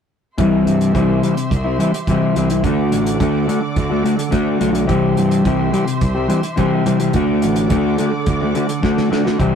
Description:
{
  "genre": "psychedelic rock",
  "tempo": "107 BPM",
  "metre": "4/4",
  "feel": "straight",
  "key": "C lydian",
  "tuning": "A4 = 436 Hz",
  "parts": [
    { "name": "muted studio string section", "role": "sustained chords", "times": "0.4-9.6 s", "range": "G4 to D6", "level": "-27 LUFS", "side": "right 2 dB", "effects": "none" },
    { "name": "mellow electric guitar", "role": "riff", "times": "0.4-9.6 s", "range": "C3 to G4", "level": "-16 LUFS", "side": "left 2 dB", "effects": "none" },
    { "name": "fuzz picked electric bass", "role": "bass", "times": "0.4-9.6 s", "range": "A1 to D3", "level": "-21 LUFS", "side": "right 1 dB", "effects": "overdrive" },
    { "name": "cloth-damped thuddy drum kit", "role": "drums", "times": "0.4-9.5 s", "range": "hi-hat, kick drum, snare drum", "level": "-22 LUFS", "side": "right 2 dB", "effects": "none" }
  ],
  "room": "moderate stone room reverb, RT60 1.0 s",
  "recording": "rough rehearsal-room recording, tube saturation",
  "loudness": "-14 LUFS",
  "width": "side -7 dB against mid",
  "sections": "0.4-9.6 A section",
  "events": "drum fill 8.8-9.4",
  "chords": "0.4 C; 2.6 D; 4.9 C; 7.1 D",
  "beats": "| 0.39 0.95 1.51 2.07 | 2.64 3.20 3.76 4.33 | 4.89 5.45 6.01 6.58 | 7.14 7.70 8.27 8.83 | 9.39"
}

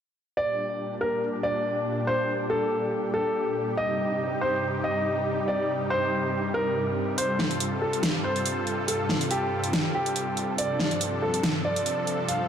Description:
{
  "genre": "heavy wobble dubstep",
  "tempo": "141 BPM",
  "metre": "4/4",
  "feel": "swing 55% on 16ths, half-time",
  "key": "G minor",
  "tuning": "A4 = 441 Hz",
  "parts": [
    { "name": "warm grand piano", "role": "melody", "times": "0.4-12.5 s", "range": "G4 to F5", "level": "-27 LUFS", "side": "equal", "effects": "ping-pong delay" },
    { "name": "supersaw pad", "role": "sustained chords", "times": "0.4-12.5 s", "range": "G2 to A4", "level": "-28 LUFS", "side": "equal", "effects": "none" },
    { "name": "dubstep drum kit", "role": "drums", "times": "7.2-12.4 s", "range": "hi-hat, snare drum", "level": "-27 LUFS", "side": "equal", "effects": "overdrive" }
  ],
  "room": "moderate lush hall reverb, RT60 2.0 s, digital ambience",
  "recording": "dark, warm production",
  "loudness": "-24 LUFS",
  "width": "side -8 dB against mid",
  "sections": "0.4-12.5 A section",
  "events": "none",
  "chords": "0.4 Gm; 3.8 Cm/G; 7.2 Fadd9/G; 10.6 Dm7/G",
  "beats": "| 0.37 0.80 1.22 1.65 | 2.07 2.50 2.92 3.35 | 3.77 4.20 4.63 5.05 | 5.48 5.90 6.33 6.75 | 7.18 7.60 8.03 8.46 | 8.88 9.31 9.73 10.16 | 10.58 11.01 11.43 11.86 | 12.29"
}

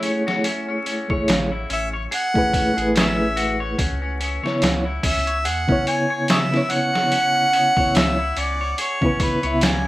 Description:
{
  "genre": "trip hop",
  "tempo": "72 BPM",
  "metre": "4/4",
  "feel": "swing 57% on 16ths",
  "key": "C# minor",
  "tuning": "A4 = 440 Hz",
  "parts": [
    { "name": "mellow reed electric piano", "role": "accompaniment", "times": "0.0-9.7 s", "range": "C#3 to E5", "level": "-23 LUFS", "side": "equal", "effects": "fast tremolo, tape echo" },
    { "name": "clean electric guitar", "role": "arpeggios", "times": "0.0-9.9 s", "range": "C#3 to C#5", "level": "-28 LUFS", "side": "left 3 dB", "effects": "tape echo" },
    { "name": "trip hop sampler-style drum kit", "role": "drums", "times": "0.0-9.8 s", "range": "hi-hat, kick drum, snare drum", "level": "-22 LUFS", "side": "equal", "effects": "overdrive" },
    { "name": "soft dub sub bass", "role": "bass", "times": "1.3-9.9 s", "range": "A1 to E2", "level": "-27 LUFS", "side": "equal", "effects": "tube saturation" },
    { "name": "mellow harmonica", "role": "melody", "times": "1.7-9.9 s", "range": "G#4 to G#5", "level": "-22 LUFS", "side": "right 1 dB", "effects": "tape echo" }
  ],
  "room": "light reverb",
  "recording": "rough home demo mix, vinyl crackle",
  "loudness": "-18 LUFS",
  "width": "side -17 dB against mid",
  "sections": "0.0-9.9 A section",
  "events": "none",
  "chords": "0.0 Amaj7; 3.8 C#m7",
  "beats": "| 0.45 1.28 2.12 2.95 | 3.78 4.62 5.45 6.28 | 7.12 7.95 8.78 9.62"
}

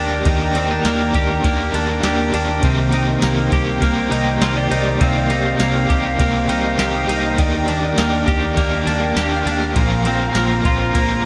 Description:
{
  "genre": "dream pop",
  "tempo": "101 BPM",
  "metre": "4/4",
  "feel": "straight",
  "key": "C minor",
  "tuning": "A4 = 440 Hz",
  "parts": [
    { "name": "overdriven semi-hollow guitar", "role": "accompaniment", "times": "0.0-11.3 s", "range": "Bb2 to G4", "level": "-24 LUFS", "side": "equal", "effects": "tremolo, analog chorus" },
    { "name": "warm woodwind section", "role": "sustained chords", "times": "0.0-11.3 s", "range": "Eb3 to Bb5", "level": "-26 LUFS", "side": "equal", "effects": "none" },
    { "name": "twelve-string electric guitar", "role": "arpeggios", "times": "0.0-11.3 s", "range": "Bb2 to G4", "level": "-22 LUFS", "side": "equal", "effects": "subtle chorus, digital delay" },
    { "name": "vintage muted fingered electric bass", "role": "bass", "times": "0.0-11.2 s", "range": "Bb1 to Eb2", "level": "-26 LUFS", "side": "equal", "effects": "none" },
    { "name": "twinkling granular texture", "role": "texture", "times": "0.1-11.3 s", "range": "C5 to Bb5", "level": "-34 LUFS", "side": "equal", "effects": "none" },
    { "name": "soft vintage rhythm box", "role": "drums", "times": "0.3-11.1 s", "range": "kick drum, ride cymbal, snare drum, tambourine", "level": "-25 LUFS", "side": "equal", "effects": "none" }
  ],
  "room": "light reverb, digital ambience",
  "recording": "none",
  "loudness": "-18 LUFS",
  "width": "mono",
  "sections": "0.0-11.3 A section",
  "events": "none",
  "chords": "0.0 Ebmaj7; 2.6 Cm7; 7.4 Ebmaj7; 9.8 Bbsus2",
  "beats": "| 0.25 0.85 1.44 2.04 | 2.63 3.22 3.82 4.41 | 5.01 5.60 6.19 6.79 | 7.38 7.98 8.57 9.16 | 9.76 10.35 10.95"
}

